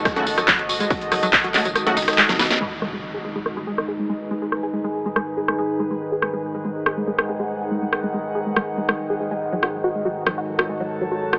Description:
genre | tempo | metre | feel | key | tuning
driving peak-time techno | 141 BPM | 4/4 | straight | G# phrygian | A4 = 440 Hz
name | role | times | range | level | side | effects
saturated sub bass | bass | 0.0-2.5 s | F#1 | -46 LUFS | equal | overdrive, sidechain pumping, low-pass filter
analog drone | drone | 0.0-11.4 s | G#2 to D#3 | -32 LUFS | equal | chorus, sidechain pumping
warbly tape-like pad | texture | 0.0-11.4 s | D#4 to A5 | -30 LUFS | equal | chorus, built-in reverb, sidechain pumping
tight sequenced synth | riff | 0.1-11.4 s | E3 to G#4 | -30 LUFS | equal | chorus, sidechain pumping, tape echo
dusty soul sampler-style drum kit | drums | 0.1-2.6 s | hi-hat, snare drum | -35 LUFS | equal | none
electronic kick drum | drums | 0.1-1.4 s | none | -28 LUFS | equal | none
techno drum kit | drums | 0.1-11.4 s | handclaps, hi-hat, rim click, snare drum, tambourine | -22 LUFS | equal | sidechain pumping on hats, low-pass filter on hats, sidechain pumping on perc, low-pass filter on perc, low-pass filter on snare
rave stab | stabs | 0.2-2.0 s | C#3 to F#4 | -31 LUFS | equal | none
impact | sound effects | 2.6-4.3 s | none | -44 LUFS | equal | none
room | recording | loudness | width
moderate huge ambient reverb, RT60 7.7 s | AM radio sound | -22 LUFS | mono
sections
0.0-2.6 A section; 2.6-11.4 B section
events
drop 0.0-2.6; kick drops out 1.8-2.6; drum fill 2.3-2.6; band accent 2.5; impact 2.6-4.3; filter sweep on synth arpeggio sound 2.6-11.4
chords
0.0 F#m; 2.6 G#m; 9.4 F#m

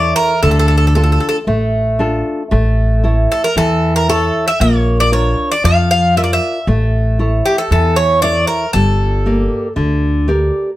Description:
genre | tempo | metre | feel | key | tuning
greek folk, Greek bouzouki band | 116 BPM | 4/4 | straight | A phrygian dominant | A4 = 440 Hz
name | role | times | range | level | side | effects
Greek bouzouki | melody | 0.0-9.7 s | G4 to F5 | -15 LUFS | equal | none
nylon-string guitar | accompaniment | 0.0-10.7 s | D3 to D5 | -17 LUFS | equal | none
upright bass | bass | 0.0-10.5 s | G1 to F2 | -15 LUFS | equal | none
room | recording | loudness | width
light reverb | none | -12 LUFS | side -15 dB against mid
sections
0.0-10.8 A section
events
none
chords
0.4 Dm; 2.5 A; 4.6 Bb; 6.7 A; 8.7 Gm

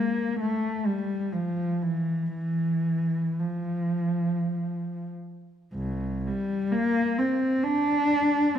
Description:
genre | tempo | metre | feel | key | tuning
classical, free, expressive piece for unaccompanied cello | 38-69 BPM | 3/4 | rubato | unclear | A4 = 440 Hz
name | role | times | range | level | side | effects
warm cello | solo | 0.0-8.6 s | C2 to D4 | -24 LUFS | equal | none
room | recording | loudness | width
wet concert hall reverb, RT60 1.7 s | dark, warm production | -24 LUFS | side -9 dB against mid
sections
0.0-5.7 A section; 5.7-8.6 B section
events
none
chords
none

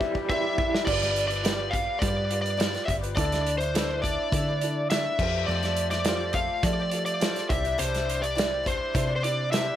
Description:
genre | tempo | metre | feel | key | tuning
folk rock and heartland rock | 104 BPM | 4/4 | straight | G mixolydian | A4 = 440 Hz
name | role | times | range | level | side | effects
picked twelve-string acoustic guitar | accompaniment | 0.0-9.8 s | G2 to G4 | -33 LUFS | left 6 dB | none
warm upright piano | accompaniment | 0.0-9.8 s | D4 to F5 | -36 LUFS | right 5 dB | none
electric guitar through a small old amp | riff | 0.0-0.9 s | E3 to E4 | -30 LUFS | right 4 dB | tremolo
loose indie drum kit | drums | 0.0-9.7 s | crash cymbal, hi-hat, kick drum, snare drum | -29 LUFS | right 1 dB | none
overdriven slide guitar | melody | 0.3-9.8 s | C5 to F5 | -28 LUFS | equal | analog delay
hollow-body short-scale picked electric bass | bass | 0.9-9.7 s | G1 to F3 | -31 LUFS | equal | none
room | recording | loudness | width
light reverb | none | -24 LUFS | side -11 dB against mid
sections
0.9-9.8 A section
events
drum fill 0.0-0.9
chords
0.0 C; 0.9 G7; 3.2 Dsus2; 5.2 Fadd9; 7.5 Cadd9

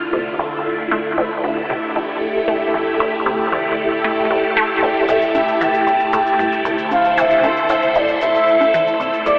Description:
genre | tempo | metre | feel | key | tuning
ambient, sequencer-driven space music | 115 BPM | 4/4 | straight | D minor | A4 = 440 Hz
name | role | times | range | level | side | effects
phased string machine | sustained chords | 0.0-9.4 s | D3 to C5 | -20 LUFS | equal | ensemble chorus, phaser, shimmer reverb
analog drone | bass | 0.4-9.4 s | D2 | -44 LUFS | equal | chorus, phaser
resonant blip pluck | riff | 0.1-9.4 s | C2 to A3 | -24 LUFS | equal | phaser, shimmer reverb, tape echo
expressive synth lead | melody | 5.1-9.4 s | D5 to G5 | -19 LUFS | equal | lush chorus, shimmer reverb, tape echo
cabasa and bongos | percussion | 5.1-9.4 s | none | -34 LUFS | equal | tape echo
room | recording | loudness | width
wet concert hall reverb, RT60 2.0 s, digital ambience | telephone sound | -17 LUFS | mono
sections
0.0-9.4 A section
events
fade-in on synth drone 0.0-9.4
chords
0.0 Dm; 5.1 Am7

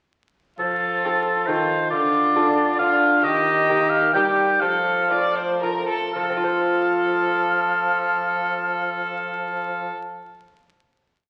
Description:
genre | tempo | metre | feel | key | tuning
classical, renaissance-style consort dance | 110-137 BPM | 3/4 | straight | F mixolydian | A4 = 442 Hz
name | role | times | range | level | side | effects
warm oboe | melody | 0.6-9.9 s | A4 to G5 | -24 LUFS | equal | none
rich violin | second line | 0.6-9.9 s | F4 to D5 | -28 LUFS | equal | none
lute | accompaniment | 0.6-10.2 s | D3 to C5 | -27 LUFS | equal | none
bright trombone | bass | 0.6-9.9 s | D3 to G3 | -30 LUFS | equal | none
room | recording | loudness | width
wet recital hall reverb, RT60 1.3 s | very old 78 rpm record, vinyl crackle | -21 LUFS | mono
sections
0.6-6.2 A section; 6.2-9.4 final chord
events
slowing down 2.6-6.2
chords
0.6 F; 1.9 Dm; 3.2 Eb; 4.6 F

